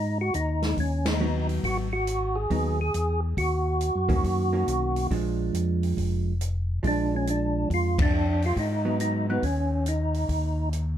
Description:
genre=soul jazz organ trio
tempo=138 BPM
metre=4/4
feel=swing 66% on 8ths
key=unclear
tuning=A4 = 441 Hz
part: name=percussive tonewheel organ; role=melody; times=0.0-10.7 s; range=Cb4 to Ab4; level=-28 LUFS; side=right 1 dB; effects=slow rotary speaker, chorus vibrato, plate reverb
part: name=mellow tonewheel organ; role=bass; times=0.0-11.0 s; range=F1 to Ab2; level=-27 LUFS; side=equal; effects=chorus vibrato, slow rotary speaker
part: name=open jazz drum kit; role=drums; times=0.3-10.9 s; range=hi-hat, kick drum, ride cymbal, snare drum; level=-31 LUFS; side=left 1 dB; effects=none
part: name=vintage hollow-body jazz guitar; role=accompaniment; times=1.2-9.4 s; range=Eb3 to Gb4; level=-30 LUFS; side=right 3 dB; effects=none
room=light reverb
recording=dark, warm production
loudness=-23 LUFS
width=side -10 dB against mid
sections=0.0-11.0 A section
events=band accent 1.0, 7.9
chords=0.0 Abm7; 3.4 Ebm7; 5.1 Bb7; 8.6 Abm7; 10.3 N.C.

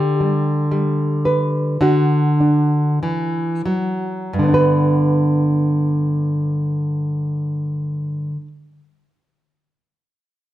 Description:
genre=folk, solo fingerstyle acoustic guitar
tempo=44-58 BPM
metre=4/4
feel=rubato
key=G major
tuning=A4 = 444 Hz
part: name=nylon-string guitar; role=solo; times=0.0-8.5 s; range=G2 to B4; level=-16 LUFS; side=equal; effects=none
room=wet large studio reverb, RT60 1.4 s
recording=none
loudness=-16 LUFS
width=side -14 dB against mid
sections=0.0-4.3 A section; 4.3-9.6 B section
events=slowing down 0.0-4.3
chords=0.0 G5/D; 1.8 D; 4.3 G

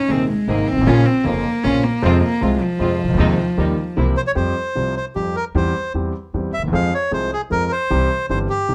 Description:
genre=tango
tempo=153 BPM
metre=3/4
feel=rubato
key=Ab major, F harmonic minor from 4.4 s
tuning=A4 = 441 Hz
part: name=warm cello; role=second line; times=0.0-4.0 s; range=F3 to Db4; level=-22 LUFS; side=equal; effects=none
part: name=warm concert grand piano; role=accompaniment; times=0.1-8.7 s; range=Eb1 to Ab4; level=-24 LUFS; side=equal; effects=none
part: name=rich chamber string section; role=stabs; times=0.1-4.1 s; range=G3 to Ab4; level=-30 LUFS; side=equal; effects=none
part: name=upright bass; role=bass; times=0.1-8.7 s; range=F1 to F2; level=-24 LUFS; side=equal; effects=none
part: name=bandoneon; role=melody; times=4.2-8.7 s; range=G4 to F5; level=-24 LUFS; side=equal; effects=none
room=light reverb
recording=dark, warm production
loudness=-19 LUFS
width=mono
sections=0.0-4.4 A section; 4.4-8.7 B section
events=cello solo 0.0-4.4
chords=0.0 Abadd9; 0.9 Bbm; 2.0 Fm; 3.2 Ab/Eb; 3.6 Eb; 4.0 C7; 4.4 Fsus2; 5.6 C/E; 6.7 Fm; 7.9 C

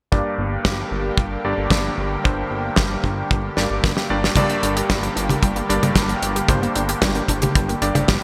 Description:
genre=italo disco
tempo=113 BPM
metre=4/4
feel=straight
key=G minor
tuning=A4 = 440 Hz
part: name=lush unison pad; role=sustained chords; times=0.4-8.2 s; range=D3 to G4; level=-30 LUFS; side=equal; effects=chorus, phaser
part: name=clear electric grand piano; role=stabs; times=0.1-8.2 s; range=G2 to D5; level=-27 LUFS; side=equal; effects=low-pass filter, digital delay
part: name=chorused synth bass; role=bass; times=0.1-8.2 s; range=G1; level=-29 LUFS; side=equal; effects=tube saturation
part: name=kick drum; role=drums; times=0.1-8.2 s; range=none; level=-22 LUFS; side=equal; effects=none
part: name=damped 70s drum kit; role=drums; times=0.6-8.2 s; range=crash cymbal, hi-hat, snare drum, toms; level=-24 LUFS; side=equal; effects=gated reverb
part: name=analog pluck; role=arpeggios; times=4.4-8.1 s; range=G3 to G4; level=-30 LUFS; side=equal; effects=chorus, cassette tape, digital delay
room=moderate lush hall reverb, RT60 1.7 s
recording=bright 1980s-style digital production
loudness=-20 LUFS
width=mono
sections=0.1-4.4 A section; 4.4-8.2 B section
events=filter sweep on electric grand piano 0.1-4.4; drum fill 3.6-4.4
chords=0.1 Gm

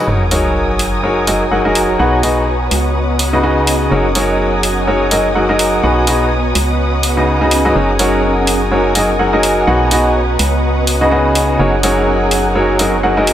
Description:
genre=piano house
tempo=125 BPM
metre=4/4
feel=swing 57% on 16ths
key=F# major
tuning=A4 = 439 Hz
part: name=muted chamber violin section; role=sustained chords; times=0.0-13.3 s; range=A#4 to D#6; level=-22 LUFS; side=left 1 dB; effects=none
part: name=bright upright piano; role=riff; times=0.0-13.3 s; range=B2 to F#5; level=-14 LUFS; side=equal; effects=dub echo
part: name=organ-like FM bass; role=bass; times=0.1-13.3 s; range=F#1 to C#2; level=-18 LUFS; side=equal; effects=tube saturation
part: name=sub drop and riser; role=sound effects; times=0.1-2.0, 12.7-13.3 s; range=none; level=-23 LUFS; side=equal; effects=none
part: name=ethereal airy pad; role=texture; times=1.0-13.3 s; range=B3 to A#5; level=-19 LUFS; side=right 1 dB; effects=ensemble chorus, built-in reverb
part: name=electronic hi-hat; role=drums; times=0.3-13.3 s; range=none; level=-19 LUFS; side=equal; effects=none
room=moderate lush hall reverb, RT60 2.1 s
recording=none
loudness=-11 LUFS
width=side -11 dB against mid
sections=0.1-13.3 A section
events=impact 0.1-2.0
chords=0.1 F#69; 2.0 B6; 2.7 C#9sus4; 3.9 F#69; 5.8 B6; 6.6 C#9sus4; 7.8 F#69; 9.7 B6; 10.4 C#9sus4; 11.6 F#69

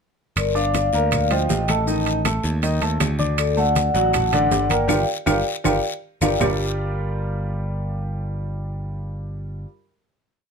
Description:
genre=latin, salsa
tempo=159 BPM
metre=4/4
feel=straight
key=G minor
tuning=A4 = 440 Hz
part: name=vibraphone with medium mallets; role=melody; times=0.4-6.3 s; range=A4 to A5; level=-22 LUFS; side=left 2 dB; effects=none
part: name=modern bright picked electric bass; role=bass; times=0.4-9.6 s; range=G1 to Eb2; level=-24 LUFS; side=equal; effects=none
part: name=claves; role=percussion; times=0.4-6.5 s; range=none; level=-32 LUFS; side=left 7 dB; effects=none
part: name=congas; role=percussion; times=0.4-6.5 s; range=none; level=-28 LUFS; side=left 4 dB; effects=none
part: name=guiro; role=percussion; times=0.4-6.5 s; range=none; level=-34 LUFS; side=left 6 dB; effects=none
part: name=maracas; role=percussion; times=0.4-6.5 s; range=none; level=-35 LUFS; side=right 6 dB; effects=none
part: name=timbales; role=percussion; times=0.4-6.5 s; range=none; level=-26 LUFS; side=right 8 dB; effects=none
part: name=clear grand piano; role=accompaniment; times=0.6-9.7 s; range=D3 to D6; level=-25 LUFS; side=right 1 dB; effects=none
room=light reverb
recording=close, detailed microphones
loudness=-19 LUFS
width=side -6 dB against mid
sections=0.4-6.4 A section; 6.4-9.4 final chord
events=band accent 4.9-6.4; drum fill 5.3-6.4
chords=0.4 Gm7; 1.9 D5; 3.4 D; 4.9 Gm7

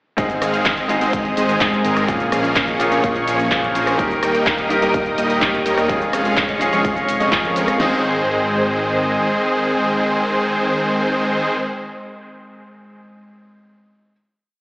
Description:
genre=EDM, festival progressive house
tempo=126 BPM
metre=4/4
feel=straight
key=Ab major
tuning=A4 = 440 Hz
part: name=bright grand piano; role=accompaniment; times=0.2-14.1 s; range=Ab2 to Bb4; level=-22 LUFS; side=equal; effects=sidechain pumping, dub echo
part: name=lush unison pad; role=sustained chords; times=0.6-11.5 s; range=Ab3 to Eb6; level=-24 LUFS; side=equal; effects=chorus, sidechain pumping
part: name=supersaw chords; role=riff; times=0.2-11.5 s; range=Eb3 to G5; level=-19 LUFS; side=equal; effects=sidechain pumping, dub echo
part: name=fat analog bass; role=bass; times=0.2-9.2 s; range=Eb1 to Ab2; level=-28 LUFS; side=equal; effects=sidechain pumping
part: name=big-room dance drum kit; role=drums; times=0.2-7.9 s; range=crash cymbal, kick drum, snare drum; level=-25 LUFS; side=equal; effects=none
part: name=big-room dance drum kit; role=drums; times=0.2-7.8 s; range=handclaps, hi-hat, rim click, shaker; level=-22 LUFS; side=equal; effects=none
room=moderate lush hall reverb, RT60 2.3 s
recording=played on a big sound system in a bare room, stone room reverb, AM radio sound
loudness=-15 LUFS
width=side -28 dB against mid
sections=0.2-7.8 drop; 7.8-11.6 final chord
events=drop 0.2-7.8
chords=0.2 Ab; 2.1 Bbm7; 4.0 Eb; 5.9 Db/F; 7.8 Ab

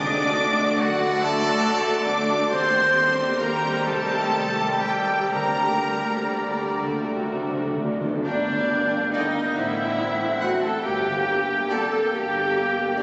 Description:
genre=classical, slow romantic movement for symphony orchestra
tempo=39-48 BPM (dotted quarters)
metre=6/8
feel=rubato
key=G minor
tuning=A4 = 440 Hz
part: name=clear symphonic violin section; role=melody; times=0.0-13.0 s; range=Bb4 to D6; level=-32 LUFS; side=equal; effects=none
part: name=hollow concert flute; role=second line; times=0.0-13.0 s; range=D5 to D6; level=-33 LUFS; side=equal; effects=none
part: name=mellow clarinet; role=second line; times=0.0-13.0 s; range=F3 to D5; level=-34 LUFS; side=equal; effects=none
part: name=rich chamber violin section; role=second line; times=0.0-13.0 s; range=F#4 to A5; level=-37 LUFS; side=equal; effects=none
part: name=warm oboe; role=second line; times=0.0-13.0 s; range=F#4 to G5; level=-30 LUFS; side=equal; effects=none
part: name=rich chamber viola section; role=accompaniment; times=0.0-13.0 s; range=G3 to A4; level=-30 LUFS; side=equal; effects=none
part: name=dark French horn section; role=sustained chords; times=0.0-13.0 s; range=A3 to A4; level=-36 LUFS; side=equal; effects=none
part: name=warm trombone section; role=sustained chords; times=0.0-13.0 s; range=A2 to Bb3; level=-35 LUFS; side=equal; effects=none
part: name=concert harp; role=arpeggios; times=0.0-13.0 s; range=G2 to D6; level=-38 LUFS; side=equal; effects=none
part: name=brilliant trumpet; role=stabs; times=0.0-13.0 s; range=D5 to G5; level=-38 LUFS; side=equal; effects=none
part: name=rich chamber cello section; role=bass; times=0.0-13.0 s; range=G2 to D4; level=-35 LUFS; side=equal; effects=none
part: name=rich chamber double bass section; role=bass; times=0.0-13.0 s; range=G1 to Eb2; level=-37 LUFS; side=equal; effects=none
part: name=timpani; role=percussion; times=0.0-1.2, 5.3-8.2 s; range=D3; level=-37 LUFS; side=equal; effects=none
part: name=mellow bassoon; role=accompaniment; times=8.3-13.0 s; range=Bb3 to C4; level=-36 LUFS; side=equal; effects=none
room=wet cathedral reverb, RT60 5.9 s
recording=recorded on a phone in the room, club reverb, compression, nothing above 8.0 kHz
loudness=-23 LUFS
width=mono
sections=0.0-8.2 A section; 8.2-13.0 B section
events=timpani fill 6.8-8.2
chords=0.0 D; 2.5 Cm/Eb; 5.3 Gm/D; 6.8 D; 8.2 Gm; 9.5 F#dim/A; 10.8 Gm

